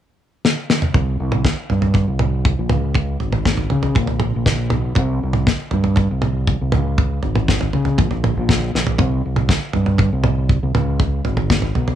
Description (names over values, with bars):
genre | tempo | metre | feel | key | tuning
psychedelic rock | 119 BPM | 4/4 | straight | unclear | A4 = 440 Hz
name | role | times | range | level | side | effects
damped 70s drum kit | drums | 0.4-12.0 s | kick drum, snare drum, toms | -18 LUFS | equal | none
growling fingered electric bass | bass | 0.9-12.0 s | Ab1 to Db3 | -19 LUFS | equal | overdrive
room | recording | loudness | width
little or no reverb | none | -16 LUFS | side -10 dB against mid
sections
0.9-12.0 A section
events
drum fill 0.4-0.9, 8.7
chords
none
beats
0.44 | 0.95 1.45 1.96 2.46 | 2.96 3.46 3.97 4.47 | 4.97 5.47 5.98 6.48 | 6.98 7.48 7.99 8.49 | 8.99 9.49 9.99 10.50 | 11.00 11.50